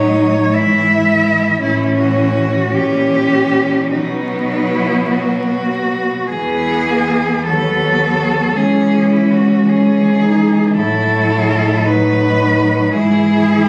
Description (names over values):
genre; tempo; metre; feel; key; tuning
classical, lyrical piece for cello ensemble; 50-57 BPM (dotted quarters); 6/8; rubato; E major; A4 = 440 Hz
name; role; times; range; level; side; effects
rich cello; melody; 0.0-13.7 s; D#4 to E5; -20 LUFS; equal; none
rich cello; second line; 0.0-13.7 s; B3 to E4; -20 LUFS; equal; none
rich cello; accompaniment; 0.0-13.7 s; E3 to F#3; -24 LUFS; equal; none
rich cello; bass; 0.0-13.7 s; C#2 to B2; -19 LUFS; equal; none
room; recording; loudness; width
moderate scoring stage reverb, RT60 1.9 s; recorded on a phone in the room, club ambience, vinyl crackle, compression; -14 LUFS; mono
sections
0.0-6.3 A section; 6.3-13.7 B section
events
none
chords
0.0 B9/A (rootless); 0.5 E/G#; 1.6 A; 2.8 A#dim7; 3.9 B; 6.3 E; 7.5 B/D#; 8.6 C#m; 10.8 F#m7/A; 12.9 E/G#